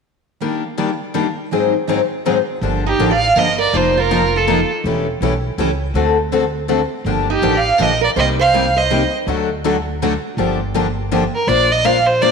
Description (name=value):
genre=acoustic string swing (jazz manouche)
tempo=162 BPM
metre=3/4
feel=swing 62% on 8ths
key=G minor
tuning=A4 = 441 Hz
part: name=picked steel-string acoustic guitar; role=accompaniment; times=0.4-12.3 s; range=Ab2 to C5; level=-19 LUFS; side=left 9 dB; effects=none
part: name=picked steel-string acoustic guitar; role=accompaniment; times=0.4-12.3 s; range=Ab2 to C5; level=-23 LUFS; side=right 9 dB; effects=none
part: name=upright bass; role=bass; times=2.6-12.3 s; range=E1 to D2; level=-22 LUFS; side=equal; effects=none
part: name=rich violin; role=melody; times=2.9-4.7, 7.3-9.1, 11.4-12.3 s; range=G4 to F5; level=-16 LUFS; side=right 3 dB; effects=none
part: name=picked steel-string acoustic guitar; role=second line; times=2.9-4.7, 7.3-9.1 s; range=Eb4 to D5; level=-21 LUFS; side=right 8 dB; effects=none
room=wet echo chamber reverb, RT60 1.7 s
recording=1960s-style stereo with parts hard left and right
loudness=-14 LUFS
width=side -5 dB against mid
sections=0.4-2.6 A section; 2.6-11.5 B section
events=none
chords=0.4 Ebmaj7; 1.5 Ab7; 2.6 Gm7; 3.7 F7sus4; 4.8 A7/E; 5.9 D7; 7.1 Gm7; 8.2 Cm7; 9.3 D; 10.4 Gm7; 11.5 Bbadd9